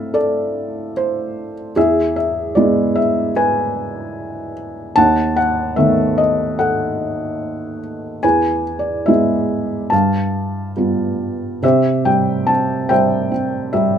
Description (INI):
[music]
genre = classical, lyrical solo piano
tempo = 73 BPM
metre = 4/4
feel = rubato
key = unclear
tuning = A4 = 439 Hz
[part]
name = felt-muted upright piano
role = solo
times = 0.0-14.0 s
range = D#2 to A5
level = -15 LUFS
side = equal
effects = none
[sound]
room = little or no reverb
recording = close, detailed microphones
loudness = -15 LUFS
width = side -8 dB against mid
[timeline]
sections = 0.0-11.6 A section; 11.6-14.0 B section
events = none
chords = 0.0 Am; 1.8 E; 5.0 B7/D#; 8.2 E; 9.9 G7; 11.6 C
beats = 0.14 0.96 | 1.76 2.56 3.36 4.16 | 4.97 5.78 6.59 7.41 | 8.23 9.07 9.92 10.77 | 11.63 12.48 13.31